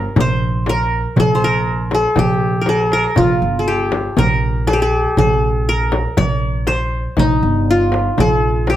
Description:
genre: Arabic maqam ensemble.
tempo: 120 BPM.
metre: 4/4.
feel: straight.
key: Bb maqam rast.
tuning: A4 = 441 Hz.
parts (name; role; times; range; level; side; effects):
qanun; melody; 0.0-8.8 s; Eb4 to D5-50c; -17 LUFS; left 1 dB; plate reverb.
upright bass; bass; 0.0-8.8 s; G1 to Bb1; -19 LUFS; equal; none.
darbuka; percussion; 0.2-8.8 s; none; -22 LUFS; right 5 dB; none.
frame drum; percussion; 0.2-8.8 s; none; -20 LUFS; left 4 dB; none.
room: light reverb.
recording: none.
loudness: -14 LUFS.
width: side -12 dB against mid.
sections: 0.0-8.8 A section.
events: drum fill 2.7-3.2.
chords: none.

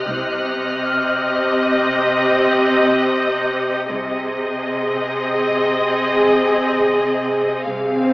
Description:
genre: cinematic.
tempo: 79 BPM.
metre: 5/4.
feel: straight.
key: unclear.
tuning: A4 = 439 Hz.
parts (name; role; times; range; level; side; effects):
rich studio violin section; melody; 0.0-8.1 s; Eb5 to F5; -21 LUFS; left 1 dB; none.
rich symphonic viola section; accompaniment; 0.0-8.1 s; C4 to Ab4; -19 LUFS; equal; none.
rich symphonic cello section; bass; 0.0-8.1 s; C3; -26 LUFS; equal; none.
rich symphonic violin section; texture; 0.0-3.5 s; Eb6 to F#6; -29 LUFS; left 1 dB; none.
warm studio double bass section; bass; 0.1-8.1 s; C2; -34 LUFS; equal; none.
vibraphone with hard mallets; texture; 0.9-8.1 s; Ab4 to F6; -24 LUFS; left 1 dB; none.
swell; sound effects; 7.9-8.1 s; none; -18 LUFS; equal; none.
room: moderate scoring stage reverb, RT60 1.5 s.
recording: AM radio sound.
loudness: -16 LUFS.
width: side -20 dB against mid.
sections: 0.0-8.1 A section.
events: swell 7.9.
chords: 0.0 Cm; 3.9 Ab/C.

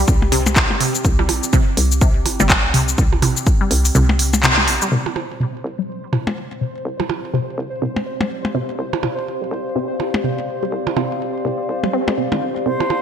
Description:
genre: minimal techno.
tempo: 124 BPM.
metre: 4/4.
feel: swing 60% on 16ths.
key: unclear.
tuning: A4 = 440 Hz.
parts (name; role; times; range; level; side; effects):
hollow knocking FM bass; bass; 0.0-13.0 s; G1 to F2; -20 LUFS; equal; sidechain pumping, high-pass filter.
warbly tape-like pad; texture; 0.0-13.0 s; C4 to F5; -28 LUFS; left 2 dB; chorus, built-in reverb, sidechain pumping.
electronic kick drum; drums; 0.1-3.6 s; none; -16 LUFS; equal; none.
minimal click drum kit; drums; 0.1-4.9 s; cabasa, handclaps, hi-hat; -18 LUFS; equal; low-pass filter on hats, low-pass filter on perc, low-pass filter on snare, gated reverb.
percussion blips; percussion; 0.2-13.0 s; none; -24 LUFS; right 2 dB; overdrive, digital delay.
resonant blip pluck; riff; 0.3-12.7 s; C3 to C4; -23 LUFS; equal; phaser, sidechain pumping, ping-pong delay.
pulsing gated texture; texture; 4.9-13.0 s; C5; -28 LUFS; equal; chorus, built-in reverb, sidechain pumping.
bright reedy wooden flute; melody; 12.7-13.0 s; C5; -21 LUFS; right 2 dB; none.
room: moderate lush hall reverb, RT60 1.5 s.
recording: bright 1980s-style digital production.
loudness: -16 LUFS.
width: side -8 dB against mid.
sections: 0.0-4.9 A section; 4.9-13.0 B section.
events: drop 0.0-4.9; kick drops out 4.0-4.9; band accent 4.4; filter sweep on synth pluck 4.9-13.0.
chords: 0.0 Csus4.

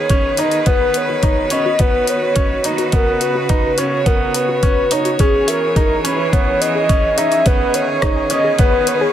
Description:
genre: piano and strings electronica.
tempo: 106 BPM.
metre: 4/4.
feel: straight.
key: G# minor.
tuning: A4 = 440 Hz.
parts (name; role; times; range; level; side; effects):
warm velvety synth lead; melody; 0.0-9.1 s; G#4 to E5; -17 LUFS; left 1 dB; chorus, digital delay.
bright string quartet; sustained chords; 0.0-9.1 s; C#3 to C#5; -23 LUFS; right 2 dB; sidechain pumping.
warbly dusty pluck; arpeggios; 0.1-9.1 s; F#4 to C#6; -28 LUFS; left 4 dB; none.
bright baby grand piano; riff; 0.1-9.0 s; B3 to D#4; -21 LUFS; right 2 dB; digital delay.
deep house drum kit; drums; 0.1-9.0 s; hi-hat, rim click; -24 LUFS; left 2 dB; none.
electronic kick drum; drums; 0.1-8.7 s; none; -16 LUFS; equal; none.
room: moderate huge ambient reverb, RT60 6.7 s.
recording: none.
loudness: -13 LUFS.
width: side -10 dB against mid.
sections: 0.0-9.1 A section.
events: build-up 0.0-9.1.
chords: 0.0 G#m; 2.9 F#sus4; 5.2 C#m/E; 7.5 G#m.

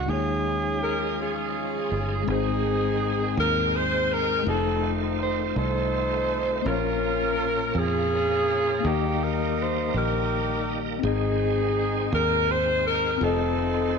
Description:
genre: slow gospel.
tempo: 55 BPM (dotted quarters).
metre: 6/8.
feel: straight.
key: Ab major.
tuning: A4 = 435 Hz.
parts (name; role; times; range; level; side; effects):
clear alto saxophone; melody; 0.0-1.6 s; F#4 to Ab4; -30 LUFS; right 3 dB; none.
mellow tine electric piano; accompaniment; 0.0-14.0 s; Ab2 to Eb5; -29 LUFS; left 10 dB; medium stereo tremolo.
bright tonewheel organ; sustained chords; 0.0-14.0 s; Eb3 to Bb4; -34 LUFS; right 10 dB; slow rotary speaker, chorus vibrato.
mellow French horn section; sustained chords; 0.0-2.3 s; Ab3 to F4; -39 LUFS; right 10 dB; none.
fingered electric bass; bass; 0.0-14.0 s; F1 to F2; -29 LUFS; right 1 dB; transformer saturation.
warm saxophone section; melody; 0.8-14.0 s; Bb3 to C5; -25 LUFS; equal; none.
room: moderate echo chamber reverb, RT60 1.8 s, small room ambience.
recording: 1960s-style stereo with parts hard left and right.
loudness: -22 LUFS.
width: side -5 dB against mid.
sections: 0.0-2.3 A section; 2.3-14.0 B section.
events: none.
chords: 0.1 Eb9sus4; 2.3 Ab; 4.5 F7; 6.7 Bbm; 8.8 Eb; 11.0 Ab; 13.2 F7.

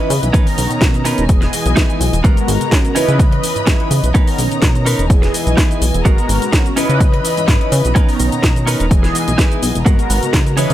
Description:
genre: filtered disco house.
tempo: 126 BPM.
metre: 4/4.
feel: swing 54% on 16ths.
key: G# minor.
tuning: A4 = 440 Hz.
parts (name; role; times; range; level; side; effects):
mellow synth brass; accompaniment; 0.0-10.7 s; D#3 to A#5; -20 LUFS; equal; chorus, phaser, sidechain pumping.
dark chamber string section; sustained chords; 0.0-10.7 s; E3 to B5; -24 LUFS; left 2 dB; sidechain pumping.
direct-recorded clean electric guitar; riff; 0.0-10.7 s; B3 to B4; -22 LUFS; right 3 dB; wide subtle chorus, sidechain pumping.
plucky analog bass; bass; 0.1-10.7 s; E1 to C#3; -18 LUFS; equal; tube saturation, sidechain pumping.
house drum kit; drums; 0.1-10.7 s; hi-hat, shaker, snare drum; -21 LUFS; equal; overdrive, sidechain pumping on hats, studio reverb, sidechain pumping on perc.
electronic kick drum; drums; 0.3-10.4 s; none; -13 LUFS; equal; overdrive, studio reverb.
room: little or no reverb.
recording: none.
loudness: -12 LUFS.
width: side -13 dB against mid.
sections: 0.0-10.7 A section.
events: none.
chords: 0.3 Bmaj9; 1.3 Emaj7; 2.2 G#m9; 3.0 C#m9; 4.1 Bmaj9; 5.1 Emaj7; 6.1 G#m9; 6.8 C#m9; 8.0 Bmaj9; 8.9 Emaj7; 9.9 G#m9.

